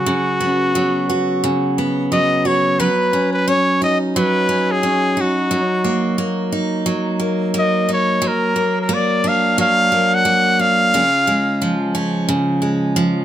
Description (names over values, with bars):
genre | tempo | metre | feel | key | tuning
pop | 88 BPM | 4/4 | swing 60% on 16ths | unclear | A4 = 440 Hz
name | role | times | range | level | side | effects
clear trumpet | melody | 0.0-12.0 s | F#4 to F#5 | -17 LUFS | equal | none
picked steel-string acoustic guitar | accompaniment | 0.0-13.2 s | C#3 to B4 | -17 LUFS | right 1 dB | none
room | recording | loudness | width
light reverb | close, detailed microphones | -15 LUFS | side -11 dB against mid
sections
0.0-2.8 A section; 2.8-13.2 B section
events
none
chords
0.0 C#7sus4; 2.8 Badd9; 5.5 D#m/F#; 8.2 A#/F#; 10.9 C#